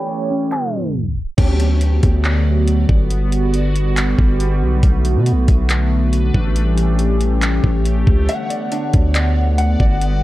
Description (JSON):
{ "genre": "hip hop, atmospheric cloud-rap", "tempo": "139 BPM", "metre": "4/4", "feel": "half-time", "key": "D major", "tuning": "A4 = 443 Hz", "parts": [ { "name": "mallet-like synth pluck", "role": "melody", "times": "0.0-1.3 s", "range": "A5", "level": "-32 LUFS", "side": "left 1 dB", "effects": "chorus, ping-pong delay" }, { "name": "hollow soft pad", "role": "sustained chords", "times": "0.0-10.2 s", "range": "D3 to F#5", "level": "-21 LUFS", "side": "equal", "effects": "chorus, sidechain pumping" }, { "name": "mellow electric guitar", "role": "arpeggios", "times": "0.0-1.4, 8.3-10.0 s", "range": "C#4 to G5", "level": "-25 LUFS", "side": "equal", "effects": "spring reverb, ping-pong delay" }, { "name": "riser", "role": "sound effects", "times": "0.6-1.4 s", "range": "none", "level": "-31 LUFS", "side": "left 1 dB", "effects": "none" }, { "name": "backwards swelling texture", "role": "texture", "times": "0.0-10.2 s", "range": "G3 to D5", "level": "-31 LUFS", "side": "left 1 dB", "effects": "built-in reverb" }, { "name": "smooth R&B drum kit", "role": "drums", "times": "0.5-10.1 s", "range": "crash cymbal, handclaps, hi-hat, kick drum", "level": "-17 LUFS", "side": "equal", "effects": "none" }, { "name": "long sustained 808-style bass", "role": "bass", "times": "1.4-10.2 s", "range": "G1 to B2", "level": "-16 LUFS", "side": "equal", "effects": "none" } ], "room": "digital ambience", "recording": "worn, warbling old tape, cassette tape, warbly pitch drift, low-pass filter, tape stop", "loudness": "-14 LUFS", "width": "side -16 dB against mid", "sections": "0.0-1.4 A section; 1.4-10.2 B section", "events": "filter sweep 0.0-1.4; kick muted 0.5-1.4; tape stop 0.5-1.4; riser 0.6-1.4; break 8.3-8.7", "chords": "0.0 A7; 1.4 D6; 3.1 Gmaj7; 4.8 Bm7; 6.6 A7; 8.3 D6", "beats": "0.09 0.52 0.95 | 1.38 1.81 2.25 2.68 | 3.11 3.54 3.97 4.40 | 4.83 5.27 5.70 6.13 | 6.56 6.99 7.42 7.86 | 8.29 8.72 9.15 9.58 | 10.01" }